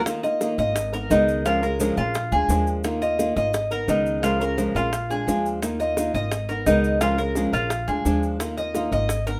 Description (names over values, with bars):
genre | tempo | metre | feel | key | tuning
latin, Cuban son and guajira | 173 BPM | 4/4 | straight | unclear | A4 = 437 Hz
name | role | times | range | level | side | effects
flamenco guitar | accompaniment | 0.1-9.4 s | Db3 to Bb4 | -28 LUFS | equal | none
bongos | percussion | 0.1-9.4 s | none | -32 LUFS | equal | none
maracas | percussion | 0.1-9.4 s | none | -40 LUFS | equal | none
Cuban tres | arpeggios | 0.2-9.4 s | Eb4 to Eb5 | -26 LUFS | equal | none
upright bass | bass | 0.6-9.4 s | Ab1 to Eb2 | -30 LUFS | equal | none
room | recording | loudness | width
moderate studio ambience, RT60 0.5 s | none | -23 LUFS | mono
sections
0.1-9.4 A section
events
none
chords
0.1 Ebsus2; 0.8 Abmadd9; 1.5 Db6; 2.1 Bb7; 2.8 Ebsus2; 3.5 Abmadd9; 4.2 Db6; 4.9 Bb7; 5.6 Ebsus2; 6.3 Abmadd9; 7.0 Db6; 7.7 Bb7; 8.4 Ebsus2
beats
| 0.06 0.41 0.76 1.10 | 1.45 1.80 2.15 2.50 | 2.84 3.19 3.54 3.88 | 4.23 4.58 4.93 5.28 | 5.62 5.97 6.32 6.66 | 7.01 7.36 7.71 8.05 | 8.40 8.75 9.09